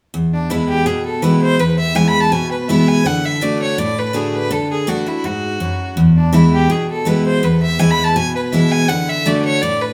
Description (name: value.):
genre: bluegrass.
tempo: 164 BPM.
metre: 4/4.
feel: swing 54% on 8ths.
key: E mixolydian.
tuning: A4 = 439 Hz.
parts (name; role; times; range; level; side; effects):
picked steel-string acoustic guitar; accompaniment; 0.1-9.9 s; E2 to F#4; -17 LUFS; equal; none.
clear fiddle; melody; 0.3-9.9 s; D4 to B5; -21 LUFS; equal; tape echo.
room: wet large studio reverb, RT60 1.2 s.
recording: band playing live in one room.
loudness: -16 LUFS.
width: mono.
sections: 0.1-9.9 A section.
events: none.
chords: 0.1 E; 3.1 D; 6.0 E; 8.9 D.